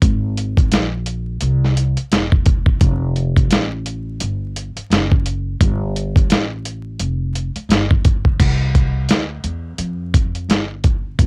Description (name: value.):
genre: hip hop, jazz-hop.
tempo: 86 BPM.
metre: 4/4.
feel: swing 59% on 16ths.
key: C mixolydian.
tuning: A4 = 442 Hz.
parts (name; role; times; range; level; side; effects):
upright bass; bass; 0.0-11.3 s; E1 to F2; -20 LUFS; equal; transformer saturation.
dusty soul sampler-style drum kit; drums; 0.0-11.3 s; crash cymbal, hi-hat, kick drum, snare drum; -14 LUFS; equal; overdrive, cassette tape.
room: little or no reverb.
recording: home recording on cassette, vinyl crackle.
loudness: -15 LUFS.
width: side -37 dB against mid.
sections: 0.0-8.4 A section; 8.4-11.3 B section.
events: none.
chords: none.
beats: | 0.02 0.72 1.42 2.12 | 2.81 3.51 4.21 4.91 | 5.60 6.30 7.00 7.70 | 8.39 9.09 9.79 10.49 | 11.19.